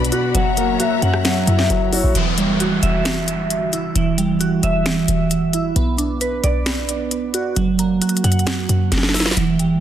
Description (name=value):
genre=hip hop, trap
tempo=133 BPM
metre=4/4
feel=half-time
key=unclear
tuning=A4 = 440 Hz
part: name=dark concert grand piano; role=accompaniment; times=0.0-2.2 s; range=B2 to F#4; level=-23 LUFS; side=left 5 dB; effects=low-pass filter
part: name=warm symphonic string section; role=sustained chords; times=0.0-2.1 s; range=F#4 to B5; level=-27 LUFS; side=left 4 dB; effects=none
part: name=glassy digital keys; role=arpeggios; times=0.0-9.8 s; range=E3 to F#5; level=-19 LUFS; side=right 4 dB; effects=chorus, low-pass filter, digital delay
part: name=short 808-style bass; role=bass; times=0.0-9.8 s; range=E1 to F#2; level=-21 LUFS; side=equal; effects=none
part: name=trap drum kit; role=drums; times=0.0-9.7 s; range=finger snaps, hi-hat, rim click, snare drum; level=-22 LUFS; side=left 1 dB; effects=none
part: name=gliding portamento lead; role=second line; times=0.3-2.1 s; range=C#5 to F#5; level=-24 LUFS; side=left 7 dB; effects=chorus, digital delay
part: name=downlifter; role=sound effects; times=2.1-5.8 s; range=none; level=-27 LUFS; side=right 1 dB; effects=none
room=light reverb, digital ambience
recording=dense, heavily limited modern master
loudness=-16 LUFS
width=side -10 dB against mid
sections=0.0-2.2 A section; 2.2-9.8 B section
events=drum fill 8.9-9.4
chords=0.3 F#7; 2.2 Emadd9; 5.8 Bm; 7.6 F#7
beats=| 0.35 0.80 1.25 1.70 | 2.15 2.60 3.05 3.50 | 3.96 4.41 4.86 5.31 | 5.76 6.21 6.66 7.11 | 7.56 8.02 8.47 8.92 | 9.37